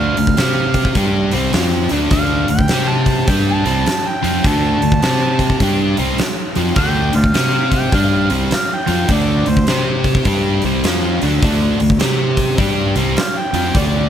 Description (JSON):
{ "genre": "blues rock power trio and southern rock", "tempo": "103 BPM", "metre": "4/4", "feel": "swing 64% on 8ths", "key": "D minor", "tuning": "A4 = 439 Hz", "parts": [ { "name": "overdriven harmonica", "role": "melody", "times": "0.0-14.1 s", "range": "C5 to A5", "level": "-22 LUFS", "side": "right 2 dB", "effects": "none" }, { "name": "overdriven electric guitar", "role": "riff", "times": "0.0-14.1 s", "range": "C3 to C5", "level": "-17 LUFS", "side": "equal", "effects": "none" }, { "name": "fuzz fingered electric bass", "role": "bass", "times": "0.0-14.1 s", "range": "C2 to C3", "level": "-20 LUFS", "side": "equal", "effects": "overdrive" }, { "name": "huge arena drum kit", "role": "drums", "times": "0.2-13.9 s", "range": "hi-hat, kick drum, snare drum", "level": "-19 LUFS", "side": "equal", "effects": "none" } ], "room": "light reverb", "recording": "none", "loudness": "-13 LUFS", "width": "side -9 dB against mid", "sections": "0.0-14.1 A section", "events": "none", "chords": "0.4 C5; 1.0 Dm; 2.7 C5; 3.3 Dm; 5.0 C5; 5.6 Dm; 7.4 C5; 7.9 Dm; 9.7 C5; 10.3 Dm; 12.0 C5; 12.6 Dm" }